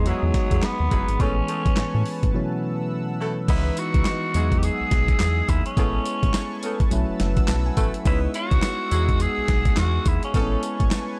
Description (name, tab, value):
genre	R&B, new jack swing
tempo	105 BPM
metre	4/4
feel	swing 60% on 16ths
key	unclear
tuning	A4 = 440 Hz
part	raspy tenor saxophone	melody	0.0-11.2 s	F#3 to G#4	-30 LUFS	equal	none
part	bell-like tine electric piano	accompaniment	0.0-11.2 s	B2 to A5	-31 LUFS	equal	none
part	chorused pulse-width pad	sustained chords	0.0-11.2 s	D#4 to E6	-37 LUFS	equal	none
part	round analog bass	bass	0.0-10.9 s	F#1 to A2	-26 LUFS	equal	none
part	warm horn section	stabs	0.1-10.6 s	G#3 to B4	-35 LUFS	equal	none
part	dusty soul sampler-style drum kit	drums	0.1-11.1 s	crash cymbal, handclaps, hi-hat, kick drum, snare drum, tambourine	-25 LUFS	equal	none
room	little or no reverb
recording	none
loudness	-22 LUFS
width	mono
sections	0.0-3.5 A section; 3.5-11.2 B section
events	break 2.3-3.5; tine electric piano fill 7.2-8.1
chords	0.0 Emaj9; 1.2 Amaj9; 2.3 B7sus4; 3.5 C#m9; 4.3 Emaj9; 5.8 Amaj9; 6.9 B7sus4; 8.1 C#m9; 8.9 Emaj9; 10.3 Amaj9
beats	0.06 0.63 | 1.20 1.77 2.34 2.91 | 3.48 4.06 4.63 5.20 | 5.77 6.34 6.91 7.49 | 8.06 8.63 9.20 9.77 | 10.34 10.91